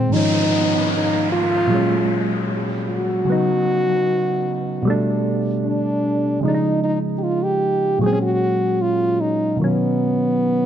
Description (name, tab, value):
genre	contemporary R&B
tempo	76 BPM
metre	4/4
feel	straight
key	unclear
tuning	A4 = 439 Hz
part	warm French horn	melody	0.0-10.7 s	Cb4 to Ab4	-20 LUFS	equal	none
part	soft electric-piano-like synth keys	accompaniment	0.0-10.7 s	Ab2 to Eb4	-20 LUFS	right 1 dB	chorus
part	downlifter	sound effects	0.1-6.4 s	none	-27 LUFS	equal	none
room	light reverb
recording	nothing above 10.6 kHz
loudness	-17 LUFS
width	side -10 dB against mid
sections	0.1-10.7 A section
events	none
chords	0.1 Eb9sus4; 1.7 Ab9sus4; 3.3 Db9sus4; 4.9 A9sus4; 6.4 Eb9sus4; 8.0 Ab9sus4; 9.6 Db9sus4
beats	| 0.12 0.91 1.70 2.49 | 3.28 4.07 4.86 5.64 | 6.43 7.22 8.01 8.80 | 9.59 10.38